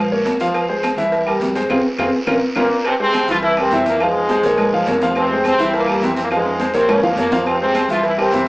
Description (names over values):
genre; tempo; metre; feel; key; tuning
latin, salsa; 208 BPM; 4/4; straight; F harmonic minor; A4 = 442 Hz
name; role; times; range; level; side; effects
warm concert grand piano; accompaniment; 0.0-8.5 s; E3 to F5; -18 LUFS; equal; none
upright bass; bass; 0.0-8.5 s; F1 to F2; -31 LUFS; equal; none
congas; percussion; 0.1-8.5 s; none; -25 LUFS; equal; none
cowbell and bongos; percussion; 0.3-8.5 s; none; -26 LUFS; equal; none
guiro; percussion; 0.3-8.5 s; none; -33 LUFS; right 1 dB; none
timbales and agogo bells; percussion; 0.3-8.5 s; none; -25 LUFS; right 1 dB; none
claves; percussion; 0.5-8.3 s; none; -30 LUFS; equal; none
brilliant trombone section; melody; 2.6-8.5 s; Ab2 to F4; -18 LUFS; equal; plate reverb
room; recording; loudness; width
wet studio reverb, RT60 0.5 s; heard from further back in the room, small speaker sound; -14 LUFS; side -22 dB against mid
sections
0.0-2.9 A section; 2.9-8.5 B section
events
drum fill 1.7-2.9, 6.3-7.5; band accent 1.7-2.9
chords
0.0 Bbm; 0.5 Fm; 1.1 C7; 1.7 Fm; 2.3 Bbm; 2.9 Fm; 3.4 C7; 4.0 Fm; 4.6 Bbm; 5.2 Fm; 5.7 C7; 6.3 Fm; 6.9 Bbm; 7.5 Fm